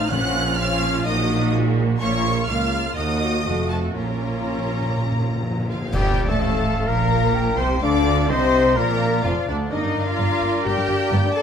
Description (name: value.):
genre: classical, dramatic, fast romantic movement for symphony orchestra.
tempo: 126 BPM.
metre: 4/4.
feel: rubato.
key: Bb minor, Bb major from 5.9 s.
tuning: A4 = 436 Hz.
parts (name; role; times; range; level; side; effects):
clear symphonic violin section; melody; 0.0-11.4 s; D5 to Gb6; -28 LUFS; left 1 dB; none.
clear studio violin section; second line; 0.0-11.4 s; D4 to Gb5; -31 LUFS; left 1 dB; none.
clear symphonic viola section; accompaniment; 0.0-11.4 s; A3 to D5; -28 LUFS; right 1 dB; none.
warm French horn section; sustained chords; 0.0-11.4 s; D3 to Gb4; -26 LUFS; left 6 dB; none.
clear symphonic cello section; bass; 0.0-11.3 s; Db2 to D3; -26 LUFS; right 1 dB; none.
clear symphonic double bass section; bass; 0.0-11.2 s; F1 to Eb2; -25 LUFS; right 4 dB; none.
timpani; percussion; 0.1-0.8, 4.0-6.6 s; Bb2; -29 LUFS; equal; none.
cymbal swell, clash cymbals and concert bass drum; percussion; 2.0-6.8 s; none; -30 LUFS; equal; none.
mellow large flute ensemble; second line; 5.9-11.4 s; D5 to D6; -29 LUFS; left 4 dB; none.
warm clarinet; second line; 5.9-11.4 s; Bb4 to G5; -29 LUFS; left 3 dB; none.
warm oboe; second line; 5.9-11.4 s; D4 to D5; -30 LUFS; right 1 dB; none.
room: moderate scoring stage reverb, RT60 1.5 s.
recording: none.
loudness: -18 LUFS.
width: side -7 dB against mid.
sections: 0.0-5.9 A section; 5.9-11.4 B section.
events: timpani fill 4.0-5.9; band accent 5.9-6.4.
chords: 0.1 Bbm; 1.1 Ebm/Bb; 2.0 Bbm; 3.0 Ebm; 3.4 F7b9; 4.0 Bbm; 5.9 Bb; 7.8 F5; 8.8 Bb; 9.7 Gm.